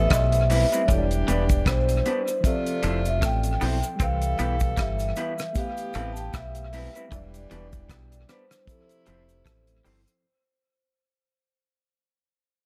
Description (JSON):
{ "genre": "lovers rock reggae", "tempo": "77 BPM", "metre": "4/4", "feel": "swing 57% on 16ths", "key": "unclear", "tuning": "A4 = 440 Hz", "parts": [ { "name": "vibraphone with soft mallets", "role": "melody", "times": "0.0-9.8 s", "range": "C5 to A5", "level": "-31 LUFS", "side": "equal", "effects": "tape echo" }, { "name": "clear saxophone section", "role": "second line", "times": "0.0-9.8 s", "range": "C3 to A4", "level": "-39 LUFS", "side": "equal", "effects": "none" }, { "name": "mellow tine electric piano", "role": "accompaniment", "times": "0.0-10.3 s", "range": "E3 to E5", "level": "-37 LUFS", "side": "equal", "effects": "medium tremolo" }, { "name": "deep dub fingered electric bass", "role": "bass", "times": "0.0-10.0 s", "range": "E1 to C2", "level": "-28 LUFS", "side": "equal", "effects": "none" }, { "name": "twangy electric guitar", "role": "riff", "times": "0.1-10.0 s", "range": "E3 to C4", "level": "-40 LUFS", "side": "equal", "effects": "none" }, { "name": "damped 70s drum kit", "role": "drums", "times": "0.1-10.2 s", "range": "hi-hat, kick drum, rim click", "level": "-29 LUFS", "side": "equal", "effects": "none" }, { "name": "cabasa", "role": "percussion", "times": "0.1-10.2 s", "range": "none", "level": "-44 LUFS", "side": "equal", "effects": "none" }, { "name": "electric guitar through a small old amp", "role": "stabs", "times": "0.5-10.0 s", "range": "G3 to C5", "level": "-35 LUFS", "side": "equal", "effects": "none" } ], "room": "light reverb, studio reverb", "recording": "none", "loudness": "-24 LUFS", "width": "mono", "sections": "0.0-10.2 A section", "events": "fade-out 0.0-10.2", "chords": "0.0 Am9; 0.9 Em7; 2.4 Fmaj7; 4.0 Cmaj7; 5.6 Am9; 7.1 Em7; 8.7 Fmaj7" }